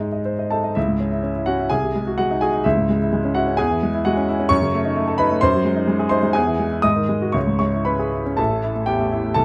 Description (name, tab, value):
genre	classical, virtuoso piano study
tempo	114-132 BPM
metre	2/4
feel	rubato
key	C# minor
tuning	A4 = 440 Hz
part	warm grand piano	solo	0.0-9.4 s	A1 to D#6	-20 LUFS	equal	none
room	light reverb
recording	close, detailed microphones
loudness	-20 LUFS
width	mono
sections	0.8-8.4 A section; 8.4-9.4 B section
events	none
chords	0.0 G#; 0.8 C#m; 1.7 G#7/B#; 2.6 C#m; 3.6 C#m/E; 4.5 D#m7b5/F#; 5.4 G#7/F#; 6.3 E; 6.8 G#5; 7.3 C#m; 8.4 A5